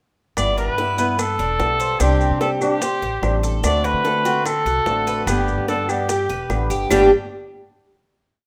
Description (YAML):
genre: latin, Cuban son and guajira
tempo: 147 BPM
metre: 4/4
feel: straight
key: G major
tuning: A4 = 440 Hz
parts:
  - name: warm trumpet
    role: melody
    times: 0.4-7.1 s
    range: G4 to D5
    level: -24 LUFS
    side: equal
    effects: none
  - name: fingerpicked swing-style acoustic guitar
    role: accompaniment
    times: 0.4-7.1 s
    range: G2 to G4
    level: -27 LUFS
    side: equal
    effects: none
  - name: upright bass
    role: bass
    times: 0.4-7.1 s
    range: E1 to D3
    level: -26 LUFS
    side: equal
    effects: none
  - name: bongos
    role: percussion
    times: 0.4-7.0 s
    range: none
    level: -32 LUFS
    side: equal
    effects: none
  - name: claves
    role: percussion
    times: 0.4-7.0 s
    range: none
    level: -36 LUFS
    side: equal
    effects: none
  - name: maracas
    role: percussion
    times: 0.4-7.0 s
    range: none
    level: -36 LUFS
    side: equal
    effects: none
  - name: Cuban tres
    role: arpeggios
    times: 0.6-7.1 s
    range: G3 to C5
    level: -25 LUFS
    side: equal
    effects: none
room: light reverb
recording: none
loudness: -19 LUFS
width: mono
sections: 0.4-6.9 A section; 6.9-8.5 final chord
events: none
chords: 0.4 G6; 2.0 Csus2; 3.6 D7; 5.3 G; 6.9 G5